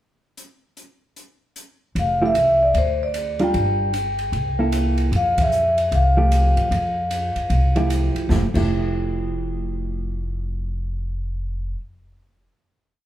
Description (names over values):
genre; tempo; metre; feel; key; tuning
jazz, small-group swing and bop; 152 BPM; 4/4; swing 64% on 8ths; F major; A4 = 443 Hz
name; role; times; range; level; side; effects
open jazz drum kit; drums; 0.4-8.6 s; crash cymbal, hi-hat, kick drum, ride cymbal, snare drum; -30 LUFS; equal; none
vibraphone with medium mallets; melody; 2.0-7.9 s; C5 to G5; -20 LUFS; left 1 dB; none
upright bass; bass; 2.0-11.7 s; F1 to F2; -22 LUFS; equal; none
hollow-body jazz guitar; accompaniment; 2.2-11.8 s; F3 to Bb4; -24 LUFS; right 2 dB; none
room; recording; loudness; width
wet large studio reverb, RT60 1.1 s; band playing live in one room; -18 LUFS; side -12 dB against mid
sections
0.4-2.0 pickup bar; 2.0-8.3 A section; 8.3-11.5 final chord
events
band accent 5.3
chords
0.4 N.C.; 2.0 Fmaj9; 2.8 Dmadd11; 3.5 Gm7; 4.3 C6; 5.1 Fmaj9